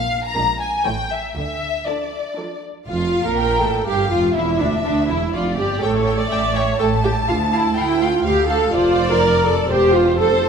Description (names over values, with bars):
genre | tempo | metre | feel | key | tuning
quick classical-period movement for string orchestra | 123 BPM | 3/4 | straight | D minor | A4 = 441 Hz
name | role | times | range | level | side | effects
rich studio violin section | melody | 0.0-10.5 s | D4 to Bb5 | -25 LUFS | left 4 dB | none
rich studio violin section | second line | 0.0-10.5 s | F4 to A5 | -24 LUFS | left 2 dB | none
clear studio viola section | accompaniment | 0.0-10.5 s | E3 to D5 | -18 LUFS | right 2 dB | none
clear studio double bass section | bass | 0.0-10.5 s | E1 to D2 | -25 LUFS | right 2 dB | none
warm studio cello section | bass | 0.0-10.5 s | D2 to D3 | -26 LUFS | right 4 dB | none
room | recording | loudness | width
wet scoring stage reverb, RT60 1.9 s | minimal, uncompressed stereo recording | -16 LUFS | side -6 dB against mid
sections
0.0-2.9 A section; 2.9-10.5 A section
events
none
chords
0.4 Bb7; 0.9 A7; 1.4 Dm; 2.9 Gm9/F; 4.4 G5; 5.8 A7; 7.3 Dm; 8.7 F5; 9.7 C/E